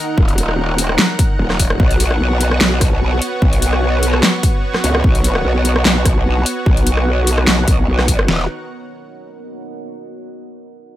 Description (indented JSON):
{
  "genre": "heavy wobble dubstep",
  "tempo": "148 BPM",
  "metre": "4/4",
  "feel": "swing 53% on 16ths, half-time",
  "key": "Eb minor",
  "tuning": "A4 = 440 Hz",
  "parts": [
    { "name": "lush unison pad", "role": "sustained chords", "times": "0.0-8.5 s", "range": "Eb3 to Gb5", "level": "-22 LUFS", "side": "right 1 dB", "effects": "chorus, sidechain pumping" },
    { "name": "deep dark ambient pad", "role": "texture", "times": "0.0-9.9 s", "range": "B3 to C#6", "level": "-32 LUFS", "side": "right 2 dB", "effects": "none" },
    { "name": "growl bass", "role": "bass", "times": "0.2-8.5 s", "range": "Eb1 to C#2", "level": "-16 LUFS", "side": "equal", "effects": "chorus, overdrive" },
    { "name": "dubstep drum kit", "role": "drums", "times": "0.2-8.4 s", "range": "kick drum, snare drum", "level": "-15 LUFS", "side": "equal", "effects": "none" },
    { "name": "dubstep drum kit", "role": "drums", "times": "0.3-8.3 s", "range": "hi-hat, rim click, snare drum", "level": "-17 LUFS", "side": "equal", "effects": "none" }
  ],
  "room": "little or no reverb",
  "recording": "none",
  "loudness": "-12 LUFS",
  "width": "side -14 dB against mid",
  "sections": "0.0-8.3 A section; 8.3-9.9 B section",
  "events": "none",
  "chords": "0.0 Ebm; 1.8 Bsus2; 8.3 Ebm"
}